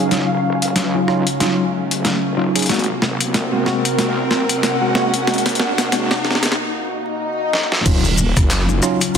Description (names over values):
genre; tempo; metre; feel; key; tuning
glitch hop; 93 BPM; 4/4; swing 58% on 16ths; Eb dorian; A4 = 440 Hz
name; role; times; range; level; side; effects
warbly tape-like pad; sustained chords; 0.0-9.2 s; C3 to Gb4; -26 LUFS; equal; chorus, built-in reverb, sidechain pumping
tine electric piano; stabs; 0.0-9.2 s; Gb3 to Ab4; -21 LUFS; right 1 dB; overdrive, medium stereo tremolo, vintage 12-bit sampler grit, sidechain pumping, low-pass filter, tape echo
wobble bass; bass; 0.0-9.2 s; Eb1 to Db2; -24 LUFS; equal; chorus, tube saturation, high-pass filter
riser, swell and impact; sound effects; 0.6-9.2 s; none; -26 LUFS; left 1 dB; none
airy breathy pad; texture; 0.0-9.2 s; Gb3 to Gb5; -23 LUFS; left 1 dB; chorus, sidechain pumping
boom bap sampler-style drum kit; drums; 0.1-9.2 s; crash cymbal, handclaps, hi-hat, rim click, shaker, snare drum; -20 LUFS; left 1 dB; soft clipping on snare
electronic kick drum; drums; 7.9-8.5 s; none; -16 LUFS; equal; none
room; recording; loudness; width
moderate lush hall reverb, RT60 1.9 s; dense, heavily limited modern master, vinyl crackle, high-pass filter; -15 LUFS; side -7 dB against mid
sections
0.0-7.9 A section; 7.9-9.2 B section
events
build-up 0.0-7.9; drum fill 0.0-6.6, 7.5-7.9; filter sweep 0.0-7.9; riser 0.6-6.6; break 6.6-7.9; swell 6.6-7.9; drop 7.9-9.2; impact 7.9-9.2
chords
0.0 Ebm9; 2.7 Ab9; 7.9 Ebm9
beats
| 0.12 0.76 1.41 2.05 | 2.69 3.34 3.99 4.63 | 5.28 5.92 6.57 7.21 | 7.86 8.50 9.15